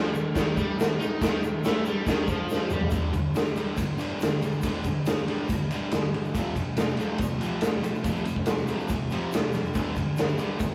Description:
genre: garage rock duo or trio.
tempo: 140 BPM.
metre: 4/4.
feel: straight.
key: unclear.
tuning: A4 = 440 Hz.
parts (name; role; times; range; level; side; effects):
fuzz guitar; riff; 0.0-10.7 s; F2 to Eb4; -32 LUFS; equal; distortion.
tube shaker; percussion; 0.1-10.7 s; none; -52 LUFS; equal; none.
raw garage drum kit; drums; 0.4-10.7 s; crash cymbal, kick drum, ride cymbal, snare drum, toms; -28 LUFS; equal; none.
room: light reverb.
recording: rough rehearsal-room recording, warm saturation.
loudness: -27 LUFS.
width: mono.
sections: 0.0-2.9 A section; 2.9-10.7 B section.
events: drum fill 2.5-2.9.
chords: 0.0 Ebadd9; 2.9 G5; 6.3 F5; 9.8 G5.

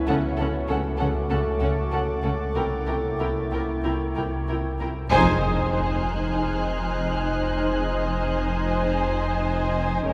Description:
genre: cinematic, suspense film score.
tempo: 97 BPM.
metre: 4/4.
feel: straight.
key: F phrygian from 5.1 s.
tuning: A4 = 440 Hz.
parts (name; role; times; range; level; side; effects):
deep dark ambient pad; sustained chords; 0.0-10.1 s; C#4 to Ab5; -34 LUFS; equal; chorus, built-in reverb.
mellow French horn section; sustained chords; 0.0-10.1 s; Ab3 to F#4; -34 LUFS; equal; none.
sub bass with octave; drone; 0.0-10.1 s; F1 to C#2; -32 LUFS; equal; none.
bright baby grand piano; texture; 0.0-10.1 s; Eb5 to G#6; -46 LUFS; equal; none.
muted studio violin section; melody; 0.1-10.1 s; F#5 to Ab5; -33 LUFS; equal; none.
muted studio violin section; second line; 0.1-10.1 s; A4 to C5; -34 LUFS; equal; none.
muted symphonic viola section; accompaniment; 0.1-10.1 s; C#4 to E4; -34 LUFS; equal; none.
muted symphonic cello section; bass; 0.1-10.1 s; F2 to C#3; -34 LUFS; equal; none.
muted symphonic double bass section; bass; 0.1-10.1 s; F1 to C#2; -35 LUFS; equal; none.
muted symphonic violin section; texture; 0.1-10.1 s; Bb5 to A6; -41 LUFS; equal; none.
timpani; percussion; 5.1-6.0 s; F2; -36 LUFS; equal; none.
impact; sound effects; 5.1-7.6 s; none; -38 LUFS; equal; none.
room: wet cathedral reverb, RT60 5.5 s.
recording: recorded in a church or concert hall.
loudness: -25 LUFS.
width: mono.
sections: 0.0-5.1 A section; 5.1-10.1 B section.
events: band accent 5.1-5.7; impact 5.1-7.6.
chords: 0.1 F#m/C#; 2.6 C7; 5.1 Fm7.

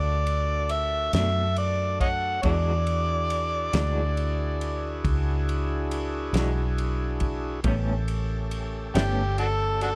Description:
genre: slow blues.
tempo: 46 BPM (dotted quarters).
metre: 12/8.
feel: straight.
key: unclear.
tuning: A4 = 441 Hz.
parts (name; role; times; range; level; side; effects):
overdriven harmonica; melody; 0.0-10.0 s; D4 to F#5; -30 LUFS; equal; none.
overdriven tonewheel organ; sustained chords; 0.0-10.0 s; A3 to A4; -37 LUFS; equal; slow rotary speaker.
vintage muted fingered electric bass; bass; 0.0-10.0 s; G1 to F#2; -29 LUFS; equal; none.
warm soul drum kit; drums; 0.3-10.0 s; kick drum, ride cymbal, snare drum; -35 LUFS; equal; none.
electric guitar through a small old amp; accompaniment; 1.1-9.2 s; A2 to F#4; -34 LUFS; equal; tremolo.
room: small room ambience.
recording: dark, warm production.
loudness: -26 LUFS.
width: mono.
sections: 0.0-10.0 A section.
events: none.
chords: 0.0 Bm7 (rootless); 2.4 E9; 7.6 A9.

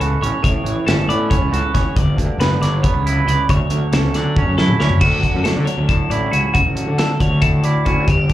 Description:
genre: math rock and midwest emo.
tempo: 275 BPM (eighths).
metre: 7/8.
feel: straight.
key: D major.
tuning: A4 = 440 Hz.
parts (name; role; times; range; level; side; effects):
twangy electric guitar; accompaniment; 0.0-8.3 s; D2 to F#4; -22 LUFS; right 5 dB; slapback echo.
twelve-string electric guitar; arpeggios; 0.0-8.3 s; F#4 to D5; -22 LUFS; left 4 dB; phaser, slapback echo.
fuzz picked electric bass; bass; 0.0-8.3 s; F#1 to D3; -18 LUFS; left 1 dB; overdrive.
modern studio drum kit; drums; 0.0-8.3 s; crash cymbal, hi-hat, kick drum, snare drum, toms; -19 LUFS; equal; none.
room: little or no reverb.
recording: live gig heard through the venue's PA, club reverb.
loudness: -14 LUFS.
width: side -13 dB against mid.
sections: 0.0-5.0 A section; 5.0-8.3 B section.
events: drum fill 4.4-5.0.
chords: 0.0 Aadd9; 2.0 Gmaj7; 3.5 Dmaj9; 5.0 Dmaj7.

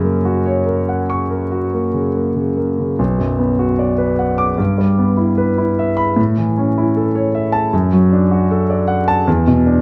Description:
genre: classical, romantic character piece for solo piano.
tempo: 70-79 BPM.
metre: 4/4.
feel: rubato.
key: unclear.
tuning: A4 = 440 Hz.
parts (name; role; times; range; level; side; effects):
warm grand piano; solo; 0.0-9.8 s; B1 to D6; -16 LUFS; equal; none.
room: moderate large studio reverb, RT60 1.1 s.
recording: dark, warm production, vinyl crackle.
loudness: -16 LUFS.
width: mono.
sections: 0.0-9.8 A section.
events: none.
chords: 0.0 F#; 3.0 Bm; 4.6 Em/G; 6.2 A; 7.7 D/F#; 9.3 E7(no3).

